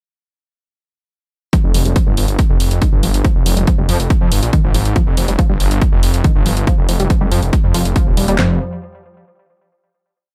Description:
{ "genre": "driving peak-time techno", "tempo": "140 BPM", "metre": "4/4", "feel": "straight", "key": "F minor", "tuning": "A4 = 441 Hz", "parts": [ { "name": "tight sequenced synth", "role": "riff", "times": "1.5-8.6 s", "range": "Eb3 to G3", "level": "-24 LUFS", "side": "equal", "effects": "chorus, sidechain pumping, tape echo" }, { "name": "electronic hi-hat", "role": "drums", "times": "1.5-8.4 s", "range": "none", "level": "-26 LUFS", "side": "equal", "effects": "overdrive, sidechain pumping on hats, studio ambience" }, { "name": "techno drum kit", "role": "drums", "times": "1.5-8.5 s", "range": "handclaps, kick drum, snare drum, toms", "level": "-17 LUFS", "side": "equal", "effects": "overdrive, studio ambience" }, { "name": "detuned saw bass", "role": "bass", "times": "1.6-8.6 s", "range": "Eb1 to F2", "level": "-19 LUFS", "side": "equal", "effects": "sidechain pumping" } ], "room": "little or no reverb", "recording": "none", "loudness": "-15 LUFS", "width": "mono", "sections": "1.5-8.4 groove; 8.4-10.1 final chord", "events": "filter sweep on synth arpeggio sound 1.5-8.4", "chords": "none" }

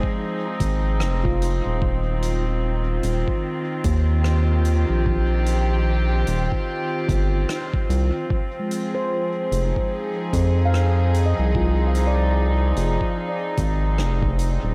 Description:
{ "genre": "ambient dub", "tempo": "74 BPM", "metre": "4/4", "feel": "swing 60% on 16ths", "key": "F dorian", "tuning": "A4 = 440 Hz", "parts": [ { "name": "rich chamber string section", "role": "sustained chords", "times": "0.0-14.7 s", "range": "Eb3 to Ab4", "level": "-28 LUFS", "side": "equal", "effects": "none" }, { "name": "handpan", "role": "arpeggios", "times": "0.0-3.6, 8.6-14.4 s", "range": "Ab3 to F5", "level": "-32 LUFS", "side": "equal", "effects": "tape echo" }, { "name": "electronic kick drum", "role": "drums", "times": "0.0-14.4 s", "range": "none", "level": "-27 LUFS", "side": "equal", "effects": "studio reverb" }, { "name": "round analog bass", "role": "bass", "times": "0.6-14.7 s", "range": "Eb1 to F2", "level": "-22 LUFS", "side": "equal", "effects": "none" }, { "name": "soft-mallet drum kit", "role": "drums", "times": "0.6-14.6 s", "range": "hi-hat, rim click", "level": "-38 LUFS", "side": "equal", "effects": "studio reverb, dub echo" } ], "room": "light reverb", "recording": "none", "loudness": "-22 LUFS", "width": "mono", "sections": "0.0-14.7 A section", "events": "none", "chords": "0.0 Fm7; 1.8 Eb69; 8.3 Fm7" }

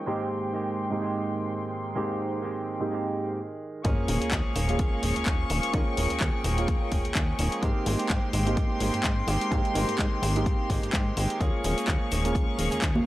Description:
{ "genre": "filtered disco house", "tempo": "127 BPM", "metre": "4/4", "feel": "swing 56% on 16ths", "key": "Ab major", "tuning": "A4 = 439 Hz", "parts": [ { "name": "dark grand piano", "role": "accompaniment", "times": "0.0-13.1 s", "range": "Ab2 to Ab4", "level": "-31 LUFS", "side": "right 2 dB", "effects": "phaser, sidechain pumping, low-pass filter" }, { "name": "rich chamber string section", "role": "sustained chords", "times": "0.0-13.1 s", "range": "Ab3 to Db6", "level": "-34 LUFS", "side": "left 2 dB", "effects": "sidechain pumping, low-pass filter" }, { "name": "direct-recorded clean electric guitar", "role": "riff", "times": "0.0-13.1 s", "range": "Eb3 to Ab4", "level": "-34 LUFS", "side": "right 3 dB", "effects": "vintage 12-bit sampler grit, sidechain pumping, low-pass filter" }, { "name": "plucky analog bass", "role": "bass", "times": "3.8-13.0 s", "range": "Eb1 to Ab2", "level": "-28 LUFS", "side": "equal", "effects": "sidechain pumping, low-pass filter" }, { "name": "electronic kick drum", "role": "drums", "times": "3.8-12.9 s", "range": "none", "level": "-27 LUFS", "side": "equal", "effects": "overdrive, studio reverb" }, { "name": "house drum kit", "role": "drums", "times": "3.8-12.9 s", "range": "handclaps, hi-hat", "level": "-33 LUFS", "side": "left 1 dB", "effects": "overdrive, sidechain pumping on hats, low-pass filter on hats, studio reverb, low-pass filter on snare" }, { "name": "sub drop", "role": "sound effects", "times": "3.8-5.7 s", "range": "none", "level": "-36 LUFS", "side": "equal", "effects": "none" }, { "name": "tube shaker and congas", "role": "percussion", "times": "11.4-13.0 s", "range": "none", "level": "-29 LUFS", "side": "right 1 dB", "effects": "sidechain pumping on perc, low-pass filter on perc" } ], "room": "little or no reverb", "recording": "dry, gritty hardware recording", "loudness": "-25 LUFS", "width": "side -16 dB against mid", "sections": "0.0-3.8 A section; 3.8-13.1 B section", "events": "stop 3.4-3.8; drop 3.8-13.1; impact 3.8-5.7", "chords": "0.1 Abmaj7; 3.8 Eb9sus4; 7.6 Abmaj7; 11.4 Eb9sus4" }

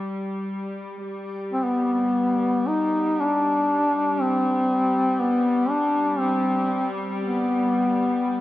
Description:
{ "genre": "caucasian folk, Caucasian lament", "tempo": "56-61 BPM", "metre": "4/4", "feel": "rubato", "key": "G major", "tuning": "A4 = 437 Hz", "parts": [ { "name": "warm studio string section", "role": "drone", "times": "0.0-8.4 s", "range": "G3", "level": "-29 LUFS", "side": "equal", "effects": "none" }, { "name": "mellow duduk", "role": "melody", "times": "1.5-8.4 s", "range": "B3 to Eb4", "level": "-21 LUFS", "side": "left 1 dB", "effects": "none" } ], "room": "moderate church reverb, RT60 3.8 s", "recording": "worn, warbling old tape, cassette tape, warbly pitch drift", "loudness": "-20 LUFS", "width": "side -15 dB against mid", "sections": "0.0-1.1 A section; 1.1-8.4 B section", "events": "none", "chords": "none" }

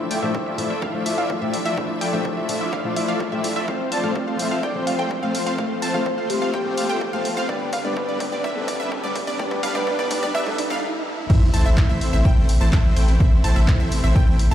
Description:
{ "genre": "EDM, festival progressive house", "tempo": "126 BPM", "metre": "4/4", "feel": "straight", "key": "A minor", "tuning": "A4 = 440 Hz", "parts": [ { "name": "fingerpicked old ladder-braced acoustic guitar", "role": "accompaniment", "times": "0.0-10.8 s", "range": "G2 to B4", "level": "-28 LUFS", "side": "left 2 dB", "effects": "sidechain pumping, tape echo" }, { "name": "bright studio string section", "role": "sustained chords", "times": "0.0-14.5 s", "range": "C3 to E5", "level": "-32 LUFS", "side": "equal", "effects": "sidechain pumping" }, { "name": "riser and sub drop", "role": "sound effects", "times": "0.0-13.2 s", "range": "none", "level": "-31 LUFS", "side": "right 1 dB", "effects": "none" }, { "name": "wide unison pluck", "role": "arpeggios", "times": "0.1-14.5 s", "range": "D5 to A5", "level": "-29 LUFS", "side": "right 1 dB", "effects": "sidechain pumping, tape echo" }, { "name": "supersaw chords", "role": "riff", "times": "0.1-14.5 s", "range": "G3 to A5", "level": "-26 LUFS", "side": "equal", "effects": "sidechain pumping, low-pass filter, tape echo" }, { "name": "big-room dance drum kit", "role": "drums", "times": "0.1-14.5 s", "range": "crash cymbal, handclaps, hi-hat", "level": "-32 LUFS", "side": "left 1 dB", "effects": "none" }, { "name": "electronic kick drum", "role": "drums", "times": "0.3-14.3 s", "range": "none", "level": "-21 LUFS", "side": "equal", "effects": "high-pass filter on kick, high-pass filter on room" }, { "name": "breathy flute-like synth lead", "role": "melody", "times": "3.9-6.9 s", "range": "G4 to E5", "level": "-31 LUFS", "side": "left 1 dB", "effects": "lush chorus, tape echo" }, { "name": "saturated sub bass", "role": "bass", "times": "11.3-14.5 s", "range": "A1", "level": "-19 LUFS", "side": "equal", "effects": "tube saturation, sidechain pumping" } ], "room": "light reverb", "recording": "played on a big sound system in a bare room, large studio reverb, high-pass filter", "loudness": "-19 LUFS", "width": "side -11 dB against mid", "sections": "0.0-11.3 A section; 11.3-14.5 B section", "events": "build-up 0.0-11.3; riser 0.0-11.3; filter sweep on supersaw synth 0.0-11.3; filter sweep on synth pluck 0.0-11.3; drum fill 3.7-10.8; stop 10.8-11.3; drop 11.3-14.5; impact 11.3-13.2", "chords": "0.0 Dmadd9; 3.7 F; 7.5 G; 11.3 Am" }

